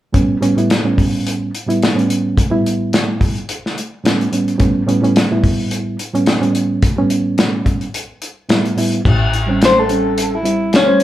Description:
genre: straight-eighth soul blues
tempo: 108 BPM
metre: 4/4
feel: swing 55% on 16ths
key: A mixolydian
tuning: A4 = 440 Hz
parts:
  - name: reed electric piano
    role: accompaniment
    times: 0.1-11.0 s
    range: A2 to B#4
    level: -16 LUFS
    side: right 2 dB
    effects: none
  - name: warm soul drum kit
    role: drums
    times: 0.1-11.0 s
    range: crash cymbal, hi-hat, kick drum, snare drum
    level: -17 LUFS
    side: left 1 dB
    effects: none
  - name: warm double bass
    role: bass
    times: 9.1-10.9 s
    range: A1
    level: -20 LUFS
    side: left 1 dB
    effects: none
  - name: electric guitar through a small old amp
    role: melody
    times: 9.7-11.0 s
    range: C#4 to B#4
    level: -14 LUFS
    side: left 2 dB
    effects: none
room: moderate large studio reverb, RT60 0.9 s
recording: band playing live in one room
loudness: -13 LUFS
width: side -13 dB against mid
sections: 0.1-9.1 A section; 9.1-11.0 B section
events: none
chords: 0.1 A7; 9.1 A7#9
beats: | 0.14 0.69 1.25 1.81 | 2.37 2.92 3.48 4.04 | 4.60 5.15 5.71 6.27 | 6.83 7.38 7.94 8.50 | 9.05 9.61 10.16 10.72

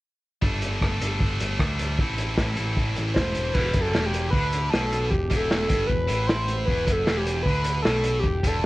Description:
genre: indie rock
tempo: 154 BPM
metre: 4/4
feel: straight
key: E minor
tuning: A4 = 438 Hz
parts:
  - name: heavy high-gain guitar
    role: riff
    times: 0.4-8.7 s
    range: E2 to A4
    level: -29 LUFS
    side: equal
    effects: distortion
  - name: growling picked electric bass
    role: bass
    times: 0.4-8.7 s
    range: E1 to D2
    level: -28 LUFS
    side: equal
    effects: overdrive
  - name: vintage drum kit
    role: drums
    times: 0.4-8.5 s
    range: crash cymbal, hi-hat, kick drum, rim click, snare drum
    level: -26 LUFS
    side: equal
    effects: none
  - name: overdriven synth lead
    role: melody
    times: 3.1-8.7 s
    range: G4 to C5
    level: -26 LUFS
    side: equal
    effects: distortion
room: light reverb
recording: worn, warbling old tape, cassette tape, warbly pitch drift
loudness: -22 LUFS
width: side -18 dB against mid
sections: 0.4-3.6 A section; 3.6-8.7 B section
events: none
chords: 0.4 Gsus2; 2.0 Am; 3.6 Em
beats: | 0.43 0.82 1.21 1.60 | 1.99 2.38 2.77 3.17 | 3.56 3.95 4.34 4.73 | 5.12 5.51 5.90 6.29 | 6.68 7.08 7.46 7.86 | 8.24 8.64

